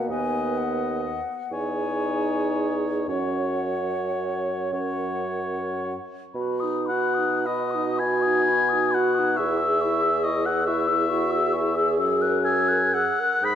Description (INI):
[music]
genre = classical, slow romantic movement for wind quintet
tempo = 35-48 BPM (dotted quarters)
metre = 6/8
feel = rubato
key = B major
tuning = A4 = 440 Hz
[part]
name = mellow concert flute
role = melody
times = 0.0-13.6 s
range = F#5 to F#6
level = -30 LUFS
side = left 6 dB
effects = none
[part]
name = clear French horn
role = accompaniment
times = 0.0-13.6 s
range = A#3 to G#4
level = -29 LUFS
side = equal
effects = none
[part]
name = mellow clarinet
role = accompaniment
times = 0.0-13.6 s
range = D#4 to C#5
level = -31 LUFS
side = right 6 dB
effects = none
[part]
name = dark bassoon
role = bass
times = 0.0-13.6 s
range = D#2 to B2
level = -28 LUFS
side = right 1 dB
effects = none
[part]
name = warm oboe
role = second line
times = 0.1-13.6 s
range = C#5 to B5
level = -26 LUFS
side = left 2 dB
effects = none
[sound]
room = wet concert hall reverb, RT60 1.8 s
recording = dark, warm production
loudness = -22 LUFS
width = side -9 dB against mid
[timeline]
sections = 0.0-6.3 A section; 6.3-13.6 B section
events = none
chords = 0.1 B/D#; 1.5 C#m/E; 3.1 F#5; 4.7 F#; 6.3 B; 9.4 C#m/E; 12.0 F#9